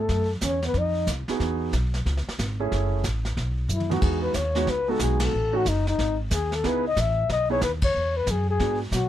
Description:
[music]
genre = jazz, small-group swing and bop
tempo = 184 BPM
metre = 4/4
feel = swing 63% on 8ths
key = E major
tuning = A4 = 440 Hz
[part]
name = breathy flugelhorn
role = melody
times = 0.0-1.1, 3.7-9.1 s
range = D#4 to E5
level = -26 LUFS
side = left 4 dB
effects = none
[part]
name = breathy trombone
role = second line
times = 0.0-1.1, 8.9-9.1 s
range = F#3 to D#4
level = -31 LUFS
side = right 6 dB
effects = none
[part]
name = upright bass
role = bass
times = 0.0-9.1 s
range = F#1 to B2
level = -26 LUFS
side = equal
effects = none
[part]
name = vintage brush drum kit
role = drums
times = 0.1-9.1 s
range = brushed snare drum, hi-hat, kick drum, ride cymbal, snare drum, toms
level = -30 LUFS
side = equal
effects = none
[part]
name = warm concert grand piano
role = accompaniment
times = 1.3-8.8 s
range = E2 to G#4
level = -28 LUFS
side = right 6 dB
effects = none
[sound]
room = little or no reverb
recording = close, detailed microphones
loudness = -22 LUFS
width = side -12 dB against mid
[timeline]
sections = 0.0-4.0 A section; 4.0-9.1 A section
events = drum fill 3.7-4.0; band accent 5.2, 7.8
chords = 0.1 A69; 0.8 F5; 1.4 Emaj7; 2.1 C#5; 2.7 F#m7; 3.4 B; 4.0 Emaj7; 5.3 D#m7b5; 6.0 G#5; 6.6 C#m7; 7.9 E7

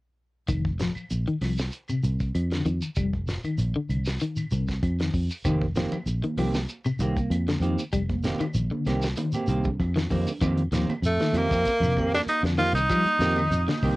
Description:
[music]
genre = afrobeat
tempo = 97 BPM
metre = 4/4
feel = straight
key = unclear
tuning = A4 = 440 Hz
[part]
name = electric guitar at the edge of break-up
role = arpeggios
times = 0.5-13.9 s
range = C3 to G3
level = -29 LUFS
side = left 2 dB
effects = tremolo, cassette tape
[part]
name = fingered electric bass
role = bass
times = 0.5-14.0 s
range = F1 to F3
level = -26 LUFS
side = equal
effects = none
[part]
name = damped 70s drum kit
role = drums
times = 0.5-14.0 s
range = hi-hat, kick drum, snare drum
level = -32 LUFS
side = equal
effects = cassette tape
[part]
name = claves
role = percussion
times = 0.5-14.0 s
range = none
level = -47 LUFS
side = right 2 dB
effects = none
[part]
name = shekere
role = percussion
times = 0.5-14.0 s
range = none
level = -36 LUFS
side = equal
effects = none
[part]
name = semi-hollow electric guitar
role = stabs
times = 5.4-14.0 s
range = Eb3 to G4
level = -29 LUFS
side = right 3 dB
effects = lush chorus, cassette tape
[part]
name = congas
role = percussion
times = 5.5-13.8 s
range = none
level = -36 LUFS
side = right 3 dB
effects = none
[part]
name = edgy tenor saxophone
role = melody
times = 11.1-13.6 s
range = A3 to F4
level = -24 LUFS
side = right 1 dB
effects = cassette tape, analog delay
[sound]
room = little or no reverb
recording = home recording on cassette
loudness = -23 LUFS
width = side -20 dB against mid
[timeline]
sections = 0.5-10.4 A section; 10.4-14.0 B section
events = drum fill 9.2-10.4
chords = 0.5 F9sus4

